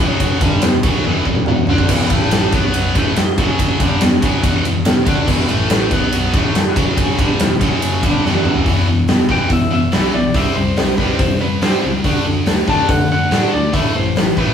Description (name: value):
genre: hard rock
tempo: 142 BPM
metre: 4/4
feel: straight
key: E minor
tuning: A4 = 441 Hz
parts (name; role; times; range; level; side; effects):
- heavy high-gain guitar; riff; 0.0-14.5 s; E2 to D4; -17 LUFS; left 1 dB; distortion
- fingered electric bass; bass; 0.0-14.5 s; E1 to D3; -23 LUFS; left 1 dB; none
- big rock drum kit; drums; 0.2-14.5 s; crash cymbal, hi-hat, kick drum, ride cymbal, snare drum, toms; -16 LUFS; equal; none
- lightly driven lead guitar; melody; 9.3-14.5 s; B4 to A5; -21 LUFS; left 2 dB; none
room: moderate studio reverb, RT60 0.6 s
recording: rough rehearsal-room recording, small room ambience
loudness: -13 LUFS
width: side -8 dB against mid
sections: 0.0-8.7 A section; 8.7-14.5 B section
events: drum fill 1.0-1.9, 8.2-8.7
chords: 0.0 F#5; 0.4 Em; 2.1 A5; 2.5 B5; 3.0 A5; 3.4 F#5; 3.8 Em; 5.5 A5; 5.9 B5; 6.3 A5; 6.8 F#5; 7.2 Em; 7.6 F#5; 8.0 Em; 8.7 E5; 10.4 C5; 12.0 D5; 13.7 Am